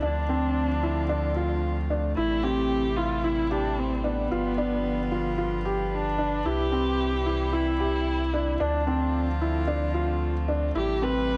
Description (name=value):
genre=electronica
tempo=112 BPM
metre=4/4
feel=straight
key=unclear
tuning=A4 = 440 Hz
part: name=rich viola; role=melody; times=0.0-11.4 s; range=B3 to B4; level=-32 LUFS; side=equal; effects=none
part: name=rich string quartet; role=sustained chords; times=0.0-11.4 s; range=C3 to B4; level=-36 LUFS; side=equal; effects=none
part: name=felt-muted upright piano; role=riff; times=0.0-11.4 s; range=C4 to G4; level=-31 LUFS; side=equal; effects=digital delay
part: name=warm sub bass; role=bass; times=0.0-11.4 s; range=G1 to D2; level=-32 LUFS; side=equal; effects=none
room=moderate lush hall reverb, RT60 1.7 s, small room ambience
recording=dark, warm production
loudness=-26 LUFS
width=mono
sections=0.0-11.4 A section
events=none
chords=0.0 Dm7; 2.2 Am7; 4.3 G7; 6.5 Cmaj7; 8.6 Dm7; 10.7 Am7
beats=| 0.03 0.57 1.11 1.64 | 2.18 2.71 3.25 3.78 | 4.32 4.86 5.39 5.93 | 6.46 7.00 7.53 8.07 | 8.61 9.14 9.68 10.21 | 10.75 11.28